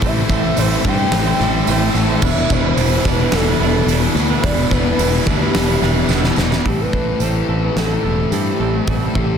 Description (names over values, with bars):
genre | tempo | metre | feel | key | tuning
rock, shoegaze and dream pop | 109 BPM | 4/4 | straight | A minor | A4 = 440 Hz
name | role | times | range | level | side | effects
twelve-string electric guitar | arpeggios | 0.0-6.7 s | E3 to D4 | -27 LUFS | left 2 dB | none
direct-recorded clean electric guitar | riff | 0.0-9.4 s | A2 to C5 | -23 LUFS | right 11 dB | reverse reverb
distorted electric guitar | riff | 0.0-6.6 s | E2 to A3 | -23 LUFS | right 2 dB | overdrive
thick fuzz guitar | riff | 0.0-9.4 s | E2 to A3 | -21 LUFS | left 11 dB | distortion, ensemble chorus
growling fingered electric bass | bass | 0.0-9.4 s | E1 to G2 | -20 LUFS | equal | overdrive
huge arena drum kit | drums | 0.0-9.3 s | crash cymbal, hi-hat, kick drum, snare drum | -22 LUFS | equal | soft clipping on kick
tambourine | percussion | 0.0-8.4 s | none | -33 LUFS | right 16 dB | none
pure sine lead | melody | 0.1-9.4 s | G4 to G5 | -23 LUFS | equal | chorus, tape echo
room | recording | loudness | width
light reverb, small room ambience | dense, heavily limited modern master | -14 LUFS | side -7 dB against mid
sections
0.0-6.7 A section; 6.7-9.4 B section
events
drum fill 6.1-6.7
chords
0.0 Am7; 2.2 Em7; 6.7 Am7